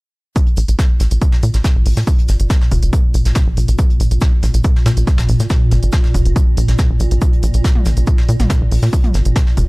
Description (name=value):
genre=driving peak-time techno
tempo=140 BPM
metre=4/4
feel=straight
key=unclear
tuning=A4 = 439 Hz
part: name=swarming drone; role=drone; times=1.3-9.7 s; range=Bb2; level=-22 LUFS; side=equal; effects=built-in reverb, sidechain pumping
part: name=electronic kick drum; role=drums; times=0.4-9.7 s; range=none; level=-14 LUFS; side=equal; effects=none
part: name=soft brush drum kit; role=drums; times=0.4-9.7 s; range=hi-hat, shaker, snare drum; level=-30 LUFS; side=left 1 dB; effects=high-pass filter on hats, high-pass filter on snare, high-pass filter on perc, high-pass filter on room
part: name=techno drum kit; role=drums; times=0.4-9.7 s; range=hi-hat, toms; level=-28 LUFS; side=equal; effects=sidechain pumping on hats, sidechain pumping on toms
part: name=tight sequencer bass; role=bass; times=0.6-9.7 s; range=F1 to Bb2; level=-14 LUFS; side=equal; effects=sidechain pumping
room=little or no reverb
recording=dry, gritty hardware recording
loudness=-12 LUFS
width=side -24 dB against mid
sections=0.4-9.7 A section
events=none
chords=none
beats=| 0.36 0.79 1.22 1.64 | 2.07 2.50 2.93 3.36 | 3.79 4.21 4.64 5.07 | 5.50 5.93 6.36 6.79 | 7.21 7.64 8.07 8.50 | 8.93 9.36